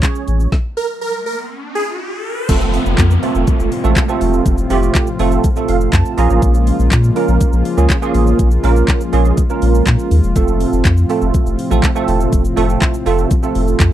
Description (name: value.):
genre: dance-pop.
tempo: 122 BPM.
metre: 4/4.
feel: straight.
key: unclear.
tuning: A4 = 439 Hz.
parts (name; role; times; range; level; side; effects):
bell-like tine electric piano; accompaniment; 0.0-13.9 s; A3 to Bb5; -18 LUFS; right 7 dB; ensemble chorus, sidechain pumping.
warm analog pad; sustained chords; 0.0-13.9 s; A2 to F4; -21 LUFS; left 2 dB; chorus, sidechain pumping.
smooth R&B drum kit; drums; 0.0-13.9 s; crash cymbal, handclaps, hi-hat, kick drum, shaker, snare drum; -16 LUFS; equal; none.
warm sub bass; bass; 0.3-13.9 s; E1 to Bb2; -14 LUFS; equal; sidechain pumping.
riser and downlifter; sound effects; 1.1-6.4 s; none; -25 LUFS; left 1 dB; none.
supersaw chords; melody; 0.8-1.8 s; Ab4 to Bb4; -20 LUFS; right 2 dB; phaser, sidechain pumping, slapback echo.
room: little or no reverb.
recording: dry, close 1970s-style studio recording.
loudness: -12 LUFS.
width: side -12 dB against mid.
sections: 0.0-2.5 A section; 2.5-13.9 B section.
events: stop 0.5-2.5; riser 1.1-2.5; tine electric piano fill 5.4-6.4.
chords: 0.0 Bbm7; 2.5 F; 6.2 Bbm7; 10.4 F.